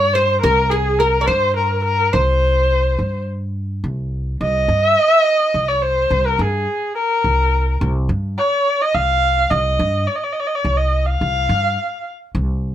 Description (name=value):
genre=persian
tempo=70 BPM (dotted quarters)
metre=6/8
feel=straight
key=C dastgah shur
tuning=A4 = 440 Hz
part: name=warm kamancheh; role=melody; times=0.0-12.1 s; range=Ab4 to F5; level=-16 LUFS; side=equal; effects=none
part: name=oud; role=second line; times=0.0-3.2 s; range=Ab4 to Db5+45c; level=-20 LUFS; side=right 2 dB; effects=none
part: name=upright bass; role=bass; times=0.0-12.7 s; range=C2 to G2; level=-20 LUFS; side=equal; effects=none
room=light reverb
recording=none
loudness=-15 LUFS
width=side -11 dB against mid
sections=0.0-3.8 A section; 3.8-12.7 B section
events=none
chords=none